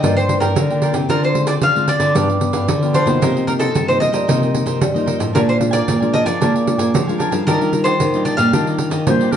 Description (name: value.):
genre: samba and choro.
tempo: 113 BPM.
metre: 4/4.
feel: straight.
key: G minor.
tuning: A4 = 439 Hz.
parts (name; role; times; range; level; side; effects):
bowl-back mandolin; melody; 0.0-9.3 s; A4 to F5; -20 LUFS; equal; none.
cavaquinho; accompaniment; 0.0-9.4 s; D4 to Ab5; -26 LUFS; equal; none.
nylon-string guitar; accompaniment; 0.0-9.4 s; G2 to F4; -21 LUFS; left 3 dB; none.
nylon-string guitar; bass; 0.0-9.4 s; G2 to G3; -20 LUFS; right 1 dB; none.
pandeiro; percussion; 0.0-9.4 s; none; -21 LUFS; right 3 dB; none.
breathy silver concert flute; second line; 9.1-9.4 s; Bb4 to C5; -19 LUFS; left 1 dB; none.
room: wet studio reverb, RT60 0.8 s.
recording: heard from further back in the room, nothing above 10.5 kHz.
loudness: -14 LUFS.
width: side -9 dB against mid.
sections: 0.0-9.4 A section.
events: none.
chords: 0.0 Gm7; 1.1 Dm7b5; 2.2 G7; 3.2 Cm7; 5.3 Bb7; 7.5 Ebmaj9.